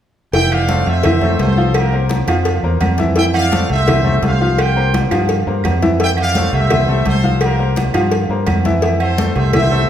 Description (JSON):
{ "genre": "latin, salsa", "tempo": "169 BPM", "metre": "4/4", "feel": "straight", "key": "F major", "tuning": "A4 = 443 Hz", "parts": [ { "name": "bright trumpet section", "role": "melody", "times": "0.3-9.9 s", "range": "G4 to G5", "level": "-20 LUFS", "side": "right 1 dB", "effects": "none" }, { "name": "bright baby grand piano", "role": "accompaniment", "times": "0.3-9.9 s", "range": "E3 to F5", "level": "-19 LUFS", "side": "left 1 dB", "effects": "none" }, { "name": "fingered electric bass", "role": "bass", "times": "0.3-9.9 s", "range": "F1 to G2", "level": "-16 LUFS", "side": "equal", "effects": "none" }, { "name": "agogo bells and timbales", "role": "percussion", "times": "0.3-9.7 s", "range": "none", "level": "-23 LUFS", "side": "right 3 dB", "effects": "none" }, { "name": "congas", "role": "percussion", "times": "0.3-9.9 s", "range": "none", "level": "-22 LUFS", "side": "left 1 dB", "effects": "none" }, { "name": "cowbell", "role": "percussion", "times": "0.3-9.7 s", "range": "none", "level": "-23 LUFS", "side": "left 2 dB", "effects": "none" }, { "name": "claves", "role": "percussion", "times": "0.5-9.7 s", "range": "none", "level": "-33 LUFS", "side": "right 7 dB", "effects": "none" } ], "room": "wet large studio reverb, RT60 1.3 s", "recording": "band playing live in one room", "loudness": "-13 LUFS", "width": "side -10 dB against mid", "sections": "0.3-9.9 A section", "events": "none", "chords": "0.3 Fmaj7; 1.7 C7sus4; 3.2 Fmaj7; 4.6 C7sus4; 6.0 Fmaj7; 7.4 C7sus4; 8.8 Fmaj7" }